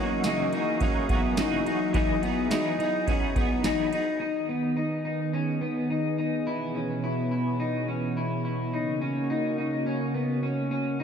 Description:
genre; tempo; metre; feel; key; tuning
dream pop; 106 BPM; 4/4; straight; unclear; A4 = 439 Hz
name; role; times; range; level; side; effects
clean electric guitar; accompaniment; 0.0-4.2 s; F#2 to G#4; -32 LUFS; right 5 dB; tremolo, ensemble chorus
lush unison pad; sustained chords; 0.0-11.0 s; B2 to D#5; -29 LUFS; right 2 dB; chorus
electric guitar at the edge of break-up; arpeggios; 0.0-11.0 s; B3 to E4; -28 LUFS; left 4 dB; wide subtle chorus, ping-pong delay
booming analog drum machine; drums; 0.2-4.1 s; kick drum, ride cymbal, snare drum, tambourine; -29 LUFS; right 1 dB; overdrive
room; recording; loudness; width
light reverb, digital ambience; played on a big sound system in a bare room, stone room reverb; -25 LUFS; side -7 dB against mid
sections
0.0-4.2 A section; 4.2-11.0 B section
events
none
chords
0.0 F#13; 1.9 Emaj9; 4.2 G#m; 6.5 C#m7/B; 8.7 F#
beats
0.24 0.81 1.37 | 1.94 2.50 3.07 3.64 | 4.20 4.77 5.33 5.90 | 6.47 7.03 7.60 8.16 | 8.73 9.30 9.86 10.43 | 10.99

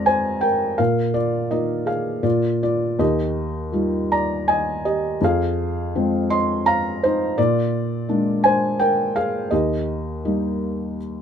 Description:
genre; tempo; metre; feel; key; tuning
classical, lyrical solo piano; 82 BPM; 3/4; rubato; Eb major; A4 = 440 Hz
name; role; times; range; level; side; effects
felt-muted upright piano; solo; 0.0-11.2 s; Eb2 to C6; -19 LUFS; equal; none
room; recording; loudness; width
light reverb; close, detailed microphones; -19 LUFS; side -8 dB against mid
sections
0.0-11.2 A section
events
none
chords
0.0 Fm; 0.8 Bbsus4; 2.2 Bb; 3.0 Ebadd9; 5.2 Fm; 7.4 Bb7; 9.5 Eb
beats
0.07 | 0.79 1.51 2.25 | 3.00 3.74 4.47 | 5.20 5.93 6.66 | 7.38 8.09 8.79 | 9.51 10.25 11.01

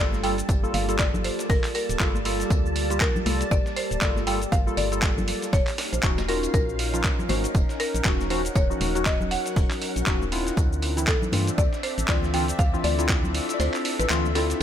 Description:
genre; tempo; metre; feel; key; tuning
deep house; 119 BPM; 4/4; swing 58% on 16ths; G minor; A4 = 440 Hz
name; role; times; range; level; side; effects
buzzing marimba with medium hard mallets; melody; 0.0-14.6 s; A4 to G5; -31 LUFS; equal; digital delay
soft string machine; sustained chords; 0.1-14.6 s; G3 to A5; -34 LUFS; equal; ensemble chorus, sidechain pumping
warm analog keys; stabs; 0.0-14.6 s; E3 to A4; -30 LUFS; left 1 dB; chorus, sidechain pumping
organ-like FM bass; bass; 0.0-14.6 s; D1 to G2; -28 LUFS; equal; tube saturation, sidechain pumping
warbly tape-like pad; texture; 0.1-14.6 s; D4 to D5; -36 LUFS; left 1 dB; chorus, built-in reverb, sidechain pumping
dusty soul sampler-style drum kit; drums; 0.1-14.6 s; cabasa, handclaps, hi-hat; -30 LUFS; equal; none
dusty soul sampler-style drum kit; drums; 0.1-14.6 s; hi-hat, snare drum, tambourine; -38 LUFS; right 2 dB; none
congas; percussion; 0.1-14.3 s; none; -34 LUFS; left 3 dB; none
electronic kick drum; drums; 0.5-13.2 s; none; -24 LUFS; equal; none
room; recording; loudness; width
little or no reverb; faint mains hum; -21 LUFS; side -10 dB against mid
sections
0.0-14.6 A section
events
kick drops out 13.6-14.6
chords
0.0 Gm9; 5.5 Ebm9; 10.6 Dm9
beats
0.49 0.99 | 1.50 2.00 2.50 3.01 | 3.51 4.02 4.52 5.03 | 5.53 6.03 6.54 7.04 | 7.55 8.05 8.55 9.06 | 9.56 10.07 10.57 11.08 | 11.58 12.09 12.59 13.09 | 13.60 14.10 14.61

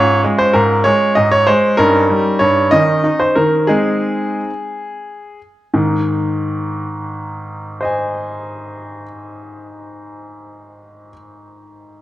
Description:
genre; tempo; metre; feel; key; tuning
classical-period piano sonatina; 57-65 BPM (dotted quarters); 6/8; straight; Ab major; A4 = 437 Hz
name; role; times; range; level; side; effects
clear baby grand piano; solo; 0.0-12.0 s; G2 to Ab5; -14 LUFS; equal; none
room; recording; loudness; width
moderate recital hall reverb, RT60 1.4 s; worn, warbling old tape, cassette tape, warbly pitch drift; -13 LUFS; side -15 dB against mid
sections
0.0-5.7 A section; 5.7-9.9 B section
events
slowing down 0.9-5.7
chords
0.0 Bbm9/Ab; 1.8 Eb7/G; 2.7 Bbmadd11/Eb; 3.7 Ab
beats
0.86 | 1.79 2.73 | 3.70 4.70 | 5.74 6.78 | 7.81 8.84

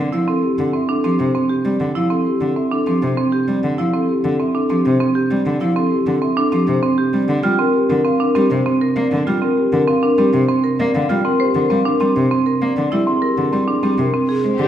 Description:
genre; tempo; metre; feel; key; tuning
classical, minimalist pattern music; 197 BPM; 6/4; straight; D minor; A4 = 440 Hz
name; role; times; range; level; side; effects
vibraphone with soft mallets; melody; 0.0-14.7 s; G4 to G5; -21 LUFS; left 5 dB; none
rich cello; accompaniment; 0.0-14.7 s; C3 to Bb3; -21 LUFS; left 1 dB; none
marimba with medium hard mallets; arpeggios; 0.1-14.5 s; C4 to C5; -18 LUFS; right 3 dB; none
glockenspiel with rubber mallets; arpeggios; 11.2-13.3 s; C6; -25 LUFS; left 4 dB; none
wooden-headed alto flute; second line; 14.6-14.7 s; G4; -24 LUFS; equal; none
clear symphonic string section; sustained chords; 14.6-14.7 s; C4 to G4; -25 LUFS; left 2 dB; none
room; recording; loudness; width
wet recital hall reverb, RT60 1.8 s; recorded in a church or concert hall; -15 LUFS; side -10 dB against mid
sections
0.0-14.6 A section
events
none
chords
0.0 Dm11; 7.3 Gm; 12.8 E7#9b13 (rootless)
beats
0.28 0.58 0.89 1.19 1.50 | 1.80 2.11 2.41 2.72 3.02 3.33 | 3.63 3.94 4.24 4.54 4.85 5.15 | 5.46 5.76 6.07 6.37 6.68 6.98 | 7.29 7.59 7.89 8.20 8.50 8.81 | 9.11 9.42 9.72 10.03 10.33 10.63 | 10.94 11.24 11.55 11.85 12.16 12.46 | 12.77 13.07 13.38 13.68 13.98 14.29 | 14.60

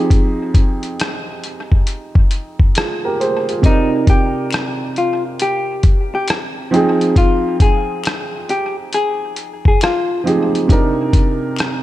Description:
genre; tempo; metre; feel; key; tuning
lo-fi hip hop; 68 BPM; 4/4; swing 65% on 16ths; unclear; A4 = 442 Hz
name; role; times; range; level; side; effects
dark upright piano; accompaniment; 0.0-11.8 s; C3 to G5; -19 LUFS; right 2 dB; cassette tape
lo-fi sampler-style drum kit; drums; 0.1-11.8 s; hi-hat, kick drum, rim click; -15 LUFS; equal; vintage 12-bit sampler grit
vintage hollow-body jazz guitar; melody; 3.7-10.2 s; Eb4 to Ab4; -20 LUFS; left 2 dB; analog delay
finger snap; percussion; 4.5-11.8 s; none; -33 LUFS; left 8 dB; none
room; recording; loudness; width
light reverb; echo-heavy mix; -14 LUFS; side -14 dB against mid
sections
0.0-11.8 A section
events
none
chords
0.0 Fm7; 3.6 Cm7; 6.7 Fm7; 10.7 Cm7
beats
| 0.10 0.99 1.87 2.75 | 3.63 4.52 5.40 6.28 | 7.16 8.04 8.93 9.81 | 10.69 11.57

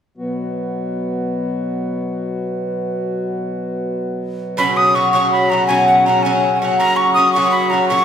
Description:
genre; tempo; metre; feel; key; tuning
celtic folk; 108 BPM (dotted quarters); 6/8; straight; unclear; A4 = 440 Hz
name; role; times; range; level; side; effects
pedal harmonium; drone; 0.2-8.0 s; B2 to F#3; -22 LUFS; left 1 dB; none
breathy mid whistle; melody; 4.6-8.0 s; F#5 to D#6; -14 LUFS; left 1 dB; none
Irish bouzouki; accompaniment; 4.6-8.0 s; A#2 to F#4; -16 LUFS; equal; none
room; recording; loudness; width
wet scoring stage reverb, RT60 1.5 s; recorded in a church or concert hall; -15 LUFS; side -8 dB against mid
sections
0.2-4.6 A section; 4.6-8.0 B section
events
none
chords
0.2 B5; 4.6 Bsus2; 6.8 F#/A#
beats
| 0.16 0.72 | 1.27 1.82 | 2.38 2.93 | 3.48 4.04 | 4.59 5.14 | 5.70 6.25 | 6.80 7.35 | 7.91

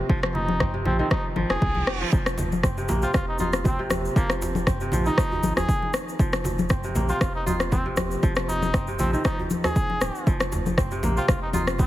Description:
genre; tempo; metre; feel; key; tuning
afro house; 118 BPM; 4/4; swing 54% on 16ths; F minor; A4 = 440 Hz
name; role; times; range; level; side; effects
kora; arpeggios; 0.0-11.9 s; C3 to F4; -30 LUFS; right 1 dB; sidechain pumping, dub echo
round analog bass; bass; 0.0-11.8 s; Eb1 to C2; -30 LUFS; equal; sidechain pumping
electronic kick drum; drums; 0.1-11.9 s; none; -24 LUFS; equal; none
deep house drum kit; drums; 0.2-11.8 s; rim click, toms; -28 LUFS; left 1 dB; none
congas; percussion; 0.2-11.9 s; none; -30 LUFS; left 2 dB; none
trumpet with cup mute; melody; 0.3-11.9 s; Bb3 to Ab4; -31 LUFS; equal; dub echo
reverse cymbal; sound effects; 1.6-2.1 s; none; -35 LUFS; right 6 dB; none
tube shaker; percussion; 2.1-11.9 s; none; -40 LUFS; left 3 dB; none
djembe; percussion; 2.4-11.9 s; none; -34 LUFS; right 2 dB; none
room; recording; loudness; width
light reverb, small room ambience; heavily compressed radio sound, multiband compression; -21 LUFS; side -14 dB against mid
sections
0.0-11.9 A section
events
reverse cymbal 1.6-2.1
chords
0.0 F7(no3)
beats
| 0.10 0.60 1.11 1.62 | 2.13 2.64 3.15 3.65 | 4.16 4.67 5.18 5.69 | 6.20 6.71 7.21 7.72 | 8.23 8.74 9.25 9.76 | 10.26 10.77 11.28 11.79

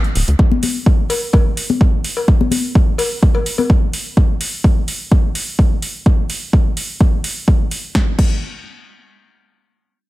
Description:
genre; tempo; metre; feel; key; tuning
progressive house; 127 BPM; 4/4; straight; none; none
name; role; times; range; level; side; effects
deep house drum kit; drums; 0.0-8.3 s; crash cymbal, hi-hat, snare drum; -23 LUFS; right 1 dB; overdrive
electronic kick drum; drums; 0.4-8.3 s; none; -12 LUFS; equal; overdrive
congas and cowbell; percussion; 0.5-3.7 s; none; -20 LUFS; left 4 dB; sidechain pumping on perc
room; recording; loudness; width
little or no reverb; none; -13 LUFS; side -17 dB against mid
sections
0.0-8.0 A section; 8.0-10.1 B section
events
none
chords
none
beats
| 0.39 0.86 1.34 1.81 | 2.28 2.75 3.23 3.70 | 4.17 4.64 5.12 5.59 | 6.06 6.53 7.00 7.48 | 7.95

